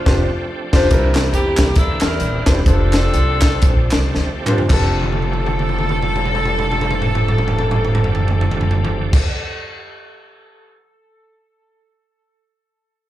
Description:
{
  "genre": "uptempo gospel",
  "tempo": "105-141 BPM",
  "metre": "4/4",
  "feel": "swing 58% on 8ths",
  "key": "F major",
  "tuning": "A4 = 439 Hz",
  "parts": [
    { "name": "warm saxophone section", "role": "melody", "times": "0.0-9.2 s", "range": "A3 to Bb4", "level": "-23 LUFS", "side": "left 1 dB", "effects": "slapback echo, tape echo" },
    { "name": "bright tonewheel organ", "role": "sustained chords", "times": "0.0-9.2 s", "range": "E3 to G4", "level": "-27 LUFS", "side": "right 1 dB", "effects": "slow rotary speaker, chorus vibrato" },
    { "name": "warm grand piano", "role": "accompaniment", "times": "0.1-9.2 s", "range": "F2 to C5", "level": "-22 LUFS", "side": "left 2 dB", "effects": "slapback echo" },
    { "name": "upright bass", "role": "bass", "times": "0.1-9.2 s", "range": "Eb1 to E2", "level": "-20 LUFS", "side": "equal", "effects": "none" },
    { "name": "crisp fusion drum kit", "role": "drums", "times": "0.1-10.7 s", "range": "crash cymbal, hi-hat, kick drum, snare drum, toms", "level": "-18 LUFS", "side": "equal", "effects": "none" },
    { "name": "group handclap", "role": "percussion", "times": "1.1-9.2 s", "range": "none", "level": "-29 LUFS", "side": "right 2 dB", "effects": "none" }
  ],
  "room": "little or no reverb",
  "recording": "live gig heard through the venue's PA, club ambience",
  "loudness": "-14 LUFS",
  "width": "side -13 dB against mid",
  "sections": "0.9-4.7 A section; 4.7-9.3 B section",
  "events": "band accent 0.0-0.9; slowing down 0.9-4.7; drum fill 4.2-4.7, 5.0-9.1",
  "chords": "0.0 F69; 0.9 C9; 2.7 F69",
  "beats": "0.06 0.48 | 0.91 1.34 1.77 2.21 | 2.67 3.14 3.63 4.15 | 4.70 5.27 5.84 6.41 | 6.98 7.54 8.11 8.68"
}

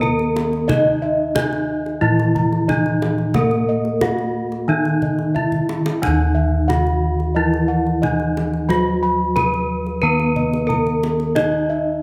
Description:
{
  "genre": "Javanese gamelan",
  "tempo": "90 BPM",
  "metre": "4/4",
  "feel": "straight",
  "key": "Eb pelog",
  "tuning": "A4 = 437 Hz",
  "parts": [
    { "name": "gamelan-type bronze metallophone", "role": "melody", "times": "0.0-12.0 s", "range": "Eb4 to Eb5", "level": "-24 LUFS", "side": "equal", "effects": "none" },
    { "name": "gamelan-type bronze metallophone", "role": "accompaniment", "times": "0.0-12.0 s", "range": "Eb3 to Eb4", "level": "-25 LUFS", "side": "equal", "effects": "none" },
    { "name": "gamelan-type bossed gongs", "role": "arpeggios", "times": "0.0-12.0 s", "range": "Eb5 to Cb6-20c", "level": "-28 LUFS", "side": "equal", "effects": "none" },
    { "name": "gamelan-type bossed gongs", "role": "bass", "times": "0.0-12.0 s", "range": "Eb2 to Eb5", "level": "-25 LUFS", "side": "equal", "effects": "none" },
    { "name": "kendang", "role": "percussion", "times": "0.0-11.5 s", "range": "none", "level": "-29 LUFS", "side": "equal", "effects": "none" }
  ],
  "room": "moderate recital hall reverb, RT60 1.6 s",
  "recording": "close, detailed microphones",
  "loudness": "-19 LUFS",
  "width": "mono",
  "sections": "0.0-12.0 A section",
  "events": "drum fill 5.4-6.0",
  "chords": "none",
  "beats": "0.02 | 0.69 1.35 2.02 2.69 | 3.35 4.02 4.69 5.36 | 6.02 6.69 7.36 8.02 | 8.69 9.36 10.02 10.69 | 11.36"
}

